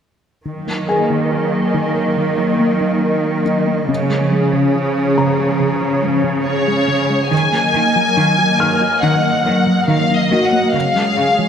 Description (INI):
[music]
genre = cinematic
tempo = 70 BPM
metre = 4/4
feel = straight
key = Eb minor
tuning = A4 = 440 Hz
[part]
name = hollow soft pad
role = sustained chords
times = 0.5-11.5 s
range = F3 to Eb5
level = -18 LUFS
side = equal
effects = ensemble chorus
[part]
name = tight sequenced synth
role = arpeggios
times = 0.5-11.5 s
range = Db3 to Eb4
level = -22 LUFS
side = equal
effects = chorus, phaser, tape echo
[part]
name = rich symphonic cello section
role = bass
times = 0.5-11.3 s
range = Db3 to Eb3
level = -20 LUFS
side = right 2 dB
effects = none
[part]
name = felt-muted upright piano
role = texture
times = 0.9-11.5 s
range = Gb4 to F6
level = -24 LUFS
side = equal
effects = tape echo
[part]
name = rich symphonic violin section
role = melody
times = 6.5-11.5 s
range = Db5 to Ab5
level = -16 LUFS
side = left 2 dB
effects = none
[sound]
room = wet scoring stage reverb, RT60 1.7 s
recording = none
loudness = -13 LUFS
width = side -8 dB against mid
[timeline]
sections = 0.5-7.3 A section; 7.3-11.5 B section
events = none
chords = 0.5 Ebm; 3.9 Db; 7.3 Ebm; 10.7 Db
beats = | 0.46 1.32 2.17 3.03 | 3.89 4.75 5.60 6.46 | 7.32 8.18 9.03 9.89 | 10.75